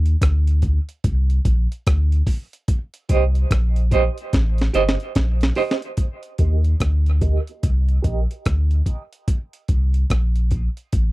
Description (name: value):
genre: dub reggae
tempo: 73 BPM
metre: 4/4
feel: swing 62% on 16ths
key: unclear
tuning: A4 = 441 Hz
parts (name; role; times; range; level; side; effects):
- warm sub bass; bass; 0.0-11.1 s; G1 to Eb2; -18 LUFS; equal; none
- breakbeat sampler-style drum kit; drums; 0.1-11.1 s; hi-hat, kick drum, rim click, snare drum; -20 LUFS; equal; none
- semi-hollow electric guitar; accompaniment; 3.1-10.7 s; G4 to Eb5; -24 LUFS; right 6 dB; tremolo, high-pass filter, low-pass filter, dub echo
room: little or no reverb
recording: dry, close 1970s-style studio recording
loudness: -18 LUFS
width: side -19 dB against mid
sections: 0.0-6.0 A section; 6.0-11.1 B section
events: break 0.0-2.7; drum fill 4.3-6.0; filter sweep on clean electric guitar 6.0-11.1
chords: 0.0 N.C.; 2.7 Cm; 6.0 Eb; 9.3 Cm